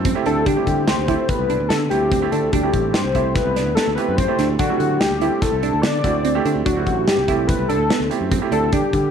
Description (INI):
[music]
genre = progressive instrumental, band music in an uneven meter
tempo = 145 BPM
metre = 5/4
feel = straight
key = D mixolydian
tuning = A4 = 441 Hz
[part]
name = bright grand piano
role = accompaniment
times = 0.0-8.7 s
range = G3 to G4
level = -25 LUFS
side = right 8 dB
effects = none
[part]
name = modern bright fingered electric bass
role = bass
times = 0.0-9.1 s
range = A1 to D3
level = -23 LUFS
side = left 2 dB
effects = none
[part]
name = glassy wavetable pluck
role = arpeggios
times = 0.1-9.1 s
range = B3 to G4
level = -25 LUFS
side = right 9 dB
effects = chorus
[part]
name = big rock drum kit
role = drums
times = 0.1-9.0 s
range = hi-hat, kick drum, snare drum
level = -23 LUFS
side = left 1 dB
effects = none
[part]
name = wide unison lead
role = melody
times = 0.3-9.1 s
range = F#4 to D5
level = -21 LUFS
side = left 3 dB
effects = none
[sound]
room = moderate plate reverb, RT60 1.6 s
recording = 1960s-style stereo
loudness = -16 LUFS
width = side -7 dB against mid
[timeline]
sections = 0.0-9.1 A section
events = none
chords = 0.0 D7sus4